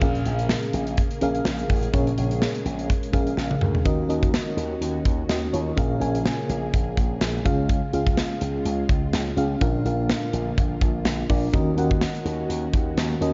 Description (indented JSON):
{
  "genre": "1980s-style pop",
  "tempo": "125 BPM",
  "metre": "4/4",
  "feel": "swing 55% on 16ths",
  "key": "unclear",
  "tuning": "A4 = 440 Hz",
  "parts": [
    { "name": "FM electric piano with tremolo", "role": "accompaniment", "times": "0.0-13.3 s", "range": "Bb2 to Ab5", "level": "-28 LUFS", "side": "equal", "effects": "none" },
    { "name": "biting overdriven guitar", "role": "accompaniment", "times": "0.0-0.5 s", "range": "F3 to Bb3", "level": "-42 LUFS", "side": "equal", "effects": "lush chorus" },
    { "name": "string machine, violas", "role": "sustained chords", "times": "0.0-13.3 s", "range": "Db3 to Ab4", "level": "-35 LUFS", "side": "equal", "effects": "ensemble chorus" },
    { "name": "slap bass with an envelope filter", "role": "bass", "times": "0.0-13.3 s", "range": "A1 to Eb2", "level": "-31 LUFS", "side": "equal", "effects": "none" },
    { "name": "modern studio drum kit", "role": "drums", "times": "0.0-13.3 s", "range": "hi-hat, kick drum, snare drum, toms", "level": "-27 LUFS", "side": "equal", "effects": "none" }
  ],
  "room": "moderate concert hall reverb, RT60 2.4 s",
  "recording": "dark, warm production, nothing above 7.5 kHz",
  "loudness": "-24 LUFS",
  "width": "mono",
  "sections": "0.0-3.9 A section; 3.9-13.3 B section",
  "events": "drum fill 3.4-3.9",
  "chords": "0.0 Bbm7; 3.9 Ebm7; 5.8 Bbm7; 7.5 Db; 9.6 Bb; 11.5 Ebm7"
}